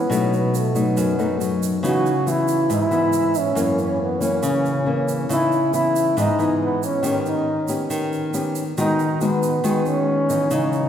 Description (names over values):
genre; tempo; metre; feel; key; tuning
bossa nova; 138 BPM; 4/4; straight; C# minor; A4 = 440 Hz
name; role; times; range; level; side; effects
mellow trombone; melody; 0.0-10.9 s; A3 to F#4; -21 LUFS; equal; none
nylon-string guitar; accompaniment; 0.0-10.9 s; F#2 to G4; -21 LUFS; left 1 dB; none
tube shaker; percussion; 0.1-10.9 s; none; -34 LUFS; right 9 dB; none
room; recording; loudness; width
wet church reverb, RT60 2.8 s; recorded in a church or concert hall; -18 LUFS; side -9 dB against mid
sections
0.0-10.9 A section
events
none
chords
0.1 B7; 1.8 C#m9; 3.6 F#7; 5.3 C#m9; 7.0 D#aug7; 8.8 G#m7/D#